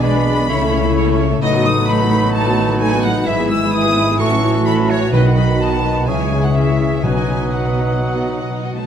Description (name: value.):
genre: classical, dramatic, fast romantic movement for symphony orchestra.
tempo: 128 BPM.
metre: 4/4.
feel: straight.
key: unclear.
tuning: A4 = 440 Hz.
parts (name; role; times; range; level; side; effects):
clear symphonic violin section; melody; 0.0-8.9 s; B4 to E6; -24 LUFS; left 2 dB; none.
mellow cor anglais; second line; 0.0-8.7 s; A4 to D#5; -27 LUFS; right 4 dB; none.
silver concert flute; second line; 0.0-8.7 s; B4 to E6; -24 LUFS; left 2 dB; none.
warm clarinet; second line; 0.0-8.8 s; D4 to B4; -24 LUFS; left 1 dB; none.
warm symphonic violin section; second line; 0.0-8.9 s; D#4 to F#5; -27 LUFS; left 1 dB; none.
warm bassoon; accompaniment; 0.0-8.8 s; D#3 to A3; -26 LUFS; right 3 dB; none.
warm symphonic viola section; accompaniment; 0.0-8.9 s; D#3 to G#4; -25 LUFS; right 2 dB; none.
mellow French horn section; sustained chords; 0.0-8.7 s; E3 to E4; -24 LUFS; left 3 dB; none.
concert harp; arpeggios; 0.0-8.9 s; G#2 to E4; -22 LUFS; left 10 dB; none.
dark symphonic double bass section; bass; 0.0-8.8 s; G#1 to C#2; -22 LUFS; right 4 dB; none.
warm symphonic cello section; bass; 0.0-8.9 s; G#2 to A3; -22 LUFS; right 4 dB; none.
timpani; percussion; 5.1-7.7 s; B2; -21 LUFS; equal; none.
room: moderate recital hall reverb, RT60 1.5 s.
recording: close, detailed microphones.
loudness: -13 LUFS.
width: side -8 dB against mid.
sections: 0.0-8.9 A section.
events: none.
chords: 0.5 A/C#; 1.4 B7/A; 3.3 E/G#; 4.2 F#m7/A; 5.1 B; 6.1 C#m; 7.0 B.